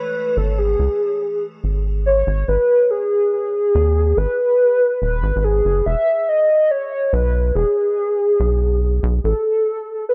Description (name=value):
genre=IDM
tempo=142 BPM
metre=4/4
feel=swing 62% on 16ths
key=unclear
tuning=A4 = 436 Hz
part: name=warbly nostalgic lead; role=melody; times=0.0-10.1 s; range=G#4 to E5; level=-19 LUFS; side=equal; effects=subtle chorus, analog delay
part: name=rubbery square bass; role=bass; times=0.4-9.3 s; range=D#1 to D#2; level=-20 LUFS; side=equal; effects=none
room=moderate echo chamber reverb, RT60 1.7 s, digital ambience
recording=transformer saturation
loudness=-18 LUFS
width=mono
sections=0.0-10.1 A section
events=none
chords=0.0 N.C.; 2.5 G#m; 5.9 E (rootless); 9.2 N.C.